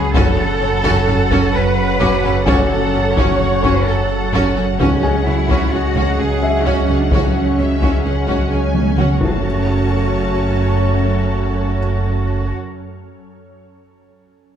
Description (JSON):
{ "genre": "cinematic, hybrid orchestral and electronic film score", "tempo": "129 BPM", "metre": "5/4", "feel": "straight", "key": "F# minor", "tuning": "A4 = 442 Hz", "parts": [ { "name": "clear symphonic violin section", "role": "melody", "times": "0.0-12.5 s", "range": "E5 to A5", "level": "-29 LUFS", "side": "left 6 dB", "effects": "none" }, { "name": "soft additive organ-like pad", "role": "sustained chords", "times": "0.0-12.5 s", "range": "F#3 to C#5", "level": "-25 LUFS", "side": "equal", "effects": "ensemble chorus, built-in reverb" }, { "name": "rich symphonic cello section", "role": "bass", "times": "0.0-12.5 s", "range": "C#4 to C#5", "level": "-22 LUFS", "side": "right 2 dB", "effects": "none" }, { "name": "sub bass with octave", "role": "bass", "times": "0.0-12.5 s", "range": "F#1 to C#2", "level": "-22 LUFS", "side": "left 1 dB", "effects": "none" }, { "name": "felt-muted upright piano", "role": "texture", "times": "0.0-9.5 s", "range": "G#4 to D6", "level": "-28 LUFS", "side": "left 2 dB", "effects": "digital delay" }, { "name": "clear studio violin section", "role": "second line", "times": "0.1-12.5 s", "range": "F#4 to C#5", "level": "-28 LUFS", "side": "left 2 dB", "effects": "none" }, { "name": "rich symphonic viola section", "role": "accompaniment", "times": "0.1-12.5 s", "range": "C#4", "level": "-24 LUFS", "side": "right 1 dB", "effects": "none" }, { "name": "mellow French horn section", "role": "sustained chords", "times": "0.1-12.5 s", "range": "C#4 to F#4", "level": "-26 LUFS", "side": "left 4 dB", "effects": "none" }, { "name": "warm trombone section", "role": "sustained chords", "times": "0.1-12.5 s", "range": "C#3 to A3", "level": "-25 LUFS", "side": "right 5 dB", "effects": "none" }, { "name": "rich symphonic double bass section", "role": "bass", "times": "0.1-12.5 s", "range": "C#2 to F#2", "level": "-22 LUFS", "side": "right 3 dB", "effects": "none" }, { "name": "taiko ensemble", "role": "drums", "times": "0.1-10.1 s", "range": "none", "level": "-21 LUFS", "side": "left 1 dB", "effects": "none" } ], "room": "moderate scoring stage reverb, RT60 1.9 s", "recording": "dark, warm production", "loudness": "-14 LUFS", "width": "side -9 dB against mid", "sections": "0.0-9.4 A section; 9.4-11.8 B section", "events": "drum fill 8.7-9.4", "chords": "0.1 F#m; 4.8 C#sus4; 9.2 F#m", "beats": "| 0.14 0.61 1.07 1.54 2.00 | 2.47 2.93 3.40 3.86 4.33 | 4.79 5.26 5.72 6.19 6.65 | 7.12 7.58 8.05 8.51 8.98 | 9.44 9.91 10.37 10.84 11.30" }